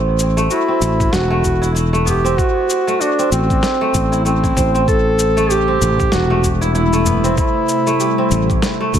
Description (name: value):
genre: organic downtempo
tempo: 96 BPM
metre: 4/4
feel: swing 58% on 16ths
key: A dorian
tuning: A4 = 440 Hz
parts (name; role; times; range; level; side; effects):
- kora; arpeggios; 0.0-9.0 s; A3 to G4; -20 LUFS; right 3 dB; dub echo
- sustaining fretless electric bass; bass; 0.0-9.0 s; E1 to D2; -17 LUFS; equal; tube saturation
- electronic cabasa and snare drum; drums; 0.2-9.0 s; none; -24 LUFS; left 2 dB; none
- warm duduk; melody; 0.5-8.6 s; C4 to A4; -18 LUFS; equal; dub echo
- electronic kick drum; drums; 1.0-9.0 s; none; -20 LUFS; equal; none
- udu; percussion; 2.1-2.2, 7.1-7.2 s; none; -26 LUFS; left 2 dB; none
- ethereal airy pad; sustained chords; 5.6-9.0 s; C3 to A3; -23 LUFS; left 2 dB; ensemble chorus, built-in reverb, sidechain pumping
room: light reverb, small room ambience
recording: echo-heavy mix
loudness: -13 LUFS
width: side -9 dB against mid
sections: 0.0-9.0 A section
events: none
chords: 0.0 Am6/E; 4.9 Am7